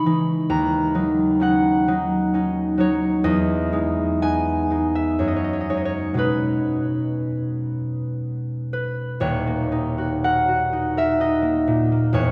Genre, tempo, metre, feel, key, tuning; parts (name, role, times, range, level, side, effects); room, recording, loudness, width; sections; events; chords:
classical, solo harp piece; 58-67 BPM; 3/4; rubato; A4 = 440 Hz
concert harp; solo; 0.0-12.3 s; D#1 to C#6; -22 LUFS; equal
wet cathedral reverb, RT60 4.4 s; recorded in a church or concert hall; -22 LUFS; mono
0.0-9.2 A section; 9.2-12.3 A section
0.5 D#m7; 3.2 Emaj7; 5.2 F#sus2; 6.2 B69; 9.2 D#m7